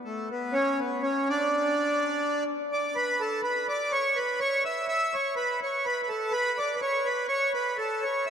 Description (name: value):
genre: celtic folk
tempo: 124 BPM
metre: 3/4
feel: swing 53% on 8ths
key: unclear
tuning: A4 = 438 Hz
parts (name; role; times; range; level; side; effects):
- accordion; solo; 0.1-8.3 s; A3 to E5; -25 LUFS; equal; none
room: wet cathedral reverb, RT60 5.2 s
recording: in a vast, echoing space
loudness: -25 LUFS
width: side -8 dB against mid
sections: 0.0-2.9 A section; 2.9-8.3 B section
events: none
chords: none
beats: | 0.05 0.53 1.02 | 1.50 1.98 2.47 | 2.95 3.43 3.91 | 4.40 4.88 5.36 | 5.84 6.32 6.80 | 7.29 7.77 8.25